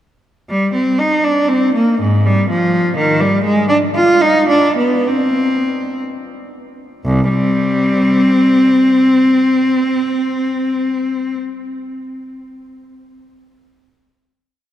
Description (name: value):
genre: classical, baroque-style suite movement for unaccompanied cello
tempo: 55-85 BPM (dotted quarters)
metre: 6/8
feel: rubato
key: C minor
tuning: A4 = 438 Hz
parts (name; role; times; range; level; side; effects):
- clear cello; solo; 0.5-11.4 s; C2 to F4; -13 LUFS; equal; none
room: wet cathedral reverb, RT60 4.6 s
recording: none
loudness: -12 LUFS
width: side -12 dB against mid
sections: 0.5-7.0 A section; 7.0-11.3 final chord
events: slowing down 2.7-7.0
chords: none